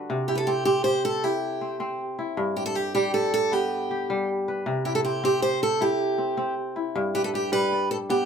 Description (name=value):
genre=west african traditional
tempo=105 BPM (dotted quarters)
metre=12/8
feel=straight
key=C lydian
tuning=A4 = 440 Hz
part: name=kora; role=arpeggios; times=0.0-8.3 s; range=G2 to D5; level=-28 LUFS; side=left 2 dB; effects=none
part: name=picked steel-string acoustic guitar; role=melody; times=0.3-8.3 s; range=G4 to C5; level=-24 LUFS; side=right 2 dB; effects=none
room=moderate small room ambience, RT60 0.5 s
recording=band playing live in one room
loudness=-23 LUFS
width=side -7 dB against mid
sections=0.1-8.3 A section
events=none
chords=0.1 C; 2.4 G; 4.7 C; 7.0 G